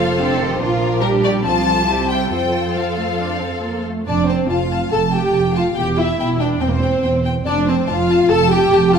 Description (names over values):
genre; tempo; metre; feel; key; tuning
quick classical-period movement for string orchestra; 141 BPM; 4/4; straight; F major; A4 = 440 Hz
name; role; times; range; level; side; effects
clear symphonic violin section; melody; 0.0-9.0 s; Bb4 to A5; -24 LUFS; left 5 dB; none
warm symphonic violin section; second line; 0.0-9.0 s; D4 to A5; -24 LUFS; left 3 dB; none
warm symphonic viola section; accompaniment; 0.0-9.0 s; D3 to A4; -18 LUFS; equal; none
warm symphonic cello section; bass; 0.0-9.0 s; E2 to A4; -24 LUFS; right 4 dB; none
warm symphonic double bass section; bass; 0.0-9.0 s; E1 to F2; -22 LUFS; right 5 dB; none
room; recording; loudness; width
moderate scoring stage reverb, RT60 1.6 s; minimal, uncompressed stereo recording; -15 LUFS; side -6 dB against mid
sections
0.0-4.1 A section; 4.1-9.0 B section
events
none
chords
0.0 F; 0.6 Bb; 1.5 F/C; 1.9 C; 2.3 F; 5.8 C/E; 7.5 F